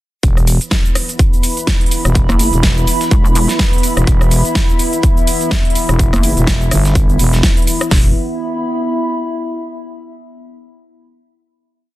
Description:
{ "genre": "bass house", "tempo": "125 BPM", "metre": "4/4", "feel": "swing 57% on 16ths", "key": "unclear", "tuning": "A4 = 441 Hz", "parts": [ { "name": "dark analog pad", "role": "sustained chords", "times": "0.6-8.1 s", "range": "E3 to B5", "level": "-24 LUFS", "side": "equal", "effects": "chorus, phaser, sidechain pumping" }, { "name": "growling FM bass", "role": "bass", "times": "0.2-8.1 s", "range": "E1 to G1", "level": "-14 LUFS", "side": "equal", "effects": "sidechain pumping" }, { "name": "big-room dance drum kit", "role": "drums", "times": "0.2-8.0 s", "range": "hi-hat, kick drum, snare drum", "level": "-13 LUFS", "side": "equal", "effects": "none" }, { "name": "big-room dance drum kit", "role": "drums", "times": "0.2-7.9 s", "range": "hi-hat, rim click, shaker, snare drum", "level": "-19 LUFS", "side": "right 1 dB", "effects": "none" }, { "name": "dusty soul sampler-style drum kit", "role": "drums", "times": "0.2-7.8 s", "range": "hi-hat, snare drum", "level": "-27 LUFS", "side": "left 2 dB", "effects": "none" }, { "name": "warbly tape-like pad", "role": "texture", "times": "0.9-9.8 s", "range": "B3 to B5", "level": "-21 LUFS", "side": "equal", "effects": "chorus, built-in reverb, sidechain pumping" }, { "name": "pulsing pluck wobble bass", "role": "bass", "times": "2.3-6.3 s", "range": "E1 to F#1", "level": "-15 LUFS", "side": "equal", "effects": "chorus, sidechain pumping" } ], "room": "little or no reverb", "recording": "dense, heavily limited modern master, lossy compression artefacts", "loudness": "-11 LUFS", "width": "side -16 dB against mid", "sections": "0.2-7.9 drop; 7.9-9.8 final chord", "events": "drop 0.2-7.9", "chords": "0.2 E5", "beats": "| 0.23 0.71 1.19 1.67 | 2.15 2.63 3.11 3.59 | 4.07 4.55 5.03 5.51 | 5.99 6.47 6.95 7.43 | 7.91 8.39 8.87 9.35" }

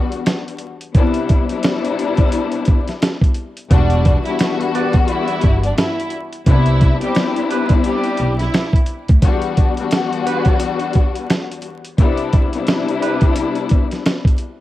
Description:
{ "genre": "hip hop, boom-bap hip-hop", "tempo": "87 BPM", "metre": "4/4", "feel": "swing 60% on 16ths", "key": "unclear", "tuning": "A4 = 440 Hz", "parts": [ { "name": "warm studio string section", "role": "accompaniment", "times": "0.0-14.3 s", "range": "E2 to F#4", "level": "-20 LUFS", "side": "left 5 dB", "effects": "cassette tape, high-pass filter, low-pass filter" }, { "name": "dusty soul sampler-style drum kit", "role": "drums", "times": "0.1-14.6 s", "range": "hi-hat, kick drum, snare drum", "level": "-15 LUFS", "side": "equal", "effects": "cassette tape" }, { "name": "rich studio violin section", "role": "melody", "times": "3.7-8.7 s", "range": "G3 to E5", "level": "-24 LUFS", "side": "right 2 dB", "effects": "high-pass filter, low-pass filter, cassette tape, analog delay" }, { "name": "upright bass", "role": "bass", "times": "3.7-9.2 s", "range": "E1 to D2", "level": "-17 LUFS", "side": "equal", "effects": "none" }, { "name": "mellow horn section", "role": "stabs", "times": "4.7-13.2 s", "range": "B3 to D5", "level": "-27 LUFS", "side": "right 8 dB", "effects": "high-pass filter, low-pass filter, cassette tape, analog delay" } ], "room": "little or no reverb", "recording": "home recording on cassette, vinyl crackle", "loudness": "-14 LUFS", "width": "side -15 dB against mid", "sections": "0.0-14.6 A section", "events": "break 0.0-3.7", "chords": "0.0 Em9; 0.9 Cmaj7; 3.7 Em9; 6.5 Cmaj7; 9.2 Em9; 12.0 Cmaj7", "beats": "0.26 | 0.95 1.64 2.33 3.02 | 3.71 4.40 5.09 5.78 | 6.47 7.16 7.85 8.54 | 9.22 9.91 10.60 11.29 | 11.98 12.67 13.36 14.05" }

